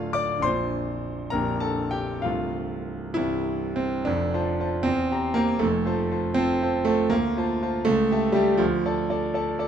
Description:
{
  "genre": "classical, romantic character piece for solo piano",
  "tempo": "63-82 BPM (dotted quarters)",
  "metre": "6/8",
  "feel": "rubato",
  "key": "F major",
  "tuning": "A4 = 440 Hz",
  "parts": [
    { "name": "clear concert grand piano", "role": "solo", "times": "0.0-9.7 s", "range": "Bb0 to D6", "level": "-22 LUFS", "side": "right 1 dB", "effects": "none" }
  ],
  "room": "light reverb",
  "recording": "close, detailed microphones",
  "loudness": "-22 LUFS",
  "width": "side -8 dB against mid",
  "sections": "0.0-4.1 A section; 4.1-9.7 B section",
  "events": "none",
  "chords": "0.5 Bb; 1.3 Gm/Bb; 2.2 F/C; 3.2 C; 4.1 F; 4.9 C7/E; 5.6 F; 7.1 Dm7; 7.9 A7/C#; 8.6 Dm"
}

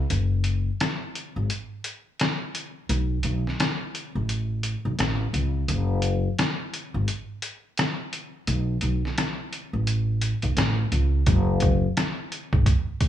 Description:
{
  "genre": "hip hop, boom-bap hip-hop",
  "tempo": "86 BPM",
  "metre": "4/4",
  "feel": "swing 61% on 16ths",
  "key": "unclear",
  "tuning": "A4 = 439 Hz",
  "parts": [
    { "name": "upright bass", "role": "bass", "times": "0.0-12.6 s", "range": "F#1 to C#2", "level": "-23 LUFS", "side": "equal", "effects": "none" },
    { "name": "trip hop sampler-style drum kit", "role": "drums", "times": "0.1-13.1 s", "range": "hi-hat, kick drum, rim click, snare drum", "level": "-26 LUFS", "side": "equal", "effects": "none" }
  ],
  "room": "light reverb",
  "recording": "small room reverb",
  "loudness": "-23 LUFS",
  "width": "side -11 dB against mid",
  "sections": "0.1-13.1 A section",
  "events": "break 0.1-11.3",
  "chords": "none"
}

